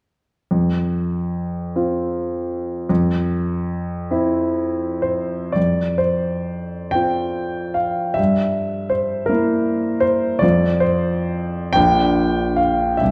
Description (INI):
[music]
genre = classical, romantic nocturne for solo piano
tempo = 37-54 BPM (dotted quarters)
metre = 6/8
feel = rubato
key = unclear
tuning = A4 = 440 Hz
[part]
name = warm concert grand piano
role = solo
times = 0.5-13.1 s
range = Bb1 to G5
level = -20 LUFS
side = equal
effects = none
[sound]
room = moderate recital hall reverb, RT60 1.5 s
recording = dark, warm production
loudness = -20 LUFS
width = mono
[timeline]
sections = 0.5-5.6 A section; 5.6-13.1 B section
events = none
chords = 0.5 F5; 2.9 C/F; 5.6 F5; 8.2 Edim/G; 10.4 F5; 11.8 Bb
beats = | 0.51 1.75 | 2.90 4.10 | 5.56 6.95 | 8.18 9.31 | 10.43 11.76 | 13.01